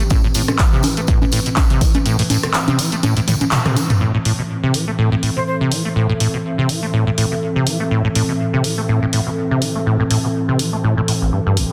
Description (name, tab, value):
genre	acid house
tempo	123 BPM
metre	4/4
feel	swing 55% on 16ths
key	A minor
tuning	A4 = 444 Hz
part	warbly tape-like pad	sustained chords	0.0-11.7 s	A2 to B4	-25 LUFS	equal	chorus, built-in reverb, sidechain pumping
part	acid bass, saw	riff	0.0-11.6 s	A1 to A3	-21 LUFS	equal	tube saturation, analog chorus, delay
part	punchy analog drum machine	drums	0.0-11.7 s	congas, handclaps, hi-hat, rim click, toms	-23 LUFS	equal	none
part	electronic kick drum	drums	0.1-1.9 s	none	-18 LUFS	equal	none
part	tambourine	percussion	0.1-4.0 s	none	-31 LUFS	equal	none
part	airy breathy pad	texture	5.2-11.7 s	C4 to E5	-29 LUFS	equal	chorus, sidechain pumping
part	breathy bright jazz flute	melody	5.4-5.6 s	C5	-29 LUFS	equal	dub echo
room	moderate plate reverb, RT60 2.2 s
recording	dense, heavily limited modern master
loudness	-17 LUFS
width	mono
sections	0.0-4.0 A section; 4.0-11.7 B section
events	kick drops out 2.1-4.0; drum fill 3.3-4.0; band accent 3.5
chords	0.0 Am